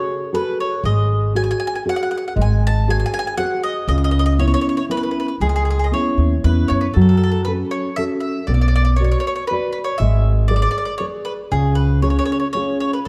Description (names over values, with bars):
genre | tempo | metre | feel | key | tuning
italian folk, Italian serenade | 118 BPM | 3/4 | straight | C# minor, F# minor from 7.0 s | A4 = 440 Hz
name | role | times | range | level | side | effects
mandolin | melody | 0.0-13.1 s | G#4 to A5 | -26 LUFS | equal | none
nylon-string guitar | accompaniment | 0.0-13.0 s | C#3 to D5 | -23 LUFS | equal | none
upright bass | bass | 0.8-12.2 s | G#1 to F#2 | -19 LUFS | equal | none
room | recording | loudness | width
moderate recital hall reverb, RT60 1.7 s | dark, warm production | -18 LUFS | mono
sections
0.0-7.0 A section; 7.0-13.1 B section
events
none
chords
0.0 F#madd9; 0.8 G#7sus4; 2.4 G#7; 3.9 C#m7; 7.0 F#m; 8.5 Bm; 10.0 G#dim; 11.5 C#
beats
0.32 | 0.83 1.35 1.86 | 2.37 2.87 3.38 | 3.88 4.39 4.90 | 5.41 5.92 6.44 | 6.96 7.47 7.97 | 8.48 8.98 9.49 | 9.99 10.49 11.00 | 11.51 12.02 12.54 | 13.05